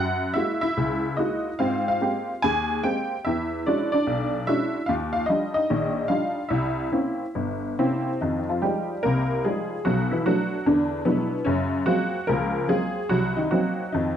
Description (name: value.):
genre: solo jazz.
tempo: 146 BPM.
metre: 4/4.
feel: swing 67% on 8ths, rubato.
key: unclear.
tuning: A4 = 440 Hz.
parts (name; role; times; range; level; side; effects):
honky-tonk upright piano; solo; 0.0-14.2 s; G1 to Ab5; -22 LUFS; equal; none.
room: moderate studio reverb, RT60 0.8 s.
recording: none.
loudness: -22 LUFS.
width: side -9 dB against mid.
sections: 0.0-8.2 A section; 8.2-14.2 B section.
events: none.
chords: 0.0 Gb9; 1.6 Abmaj9; 3.3 E13; 4.9 Ebmaj9; 6.5 C7b9; 8.2 Fm9; 9.9 Bm7; 10.7 E9; 11.5 Gbmaj9#11; 13.1 Cm7b5.